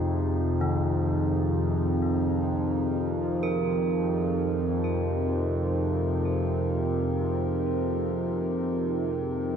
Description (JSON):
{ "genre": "dark ambient drone", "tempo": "free time", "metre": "none", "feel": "none", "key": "F minor", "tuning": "A4 = 439 Hz", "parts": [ { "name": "dark analog pad", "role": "sustained chords", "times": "0.0-9.6 s", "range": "Eb4 to C5", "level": "-30 LUFS", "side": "equal", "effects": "chorus" }, { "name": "analog drone", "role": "drone", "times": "0.0-9.6 s", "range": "F2 to C3", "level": "-26 LUFS", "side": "equal", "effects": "chorus" }, { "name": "gamelan-type bronze metallophone", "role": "arpeggios", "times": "0.6-9.1 s", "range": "Eb3 to Bb4", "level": "-34 LUFS", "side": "right 4 dB", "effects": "ping-pong delay" } ], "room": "wet cathedral reverb, RT60 5.6 s", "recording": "in a vast, echoing space, cassette tape", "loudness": "-24 LUFS", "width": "side -7 dB against mid", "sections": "0.0-9.6 A section", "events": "none", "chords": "0.0 Fm", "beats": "free time" }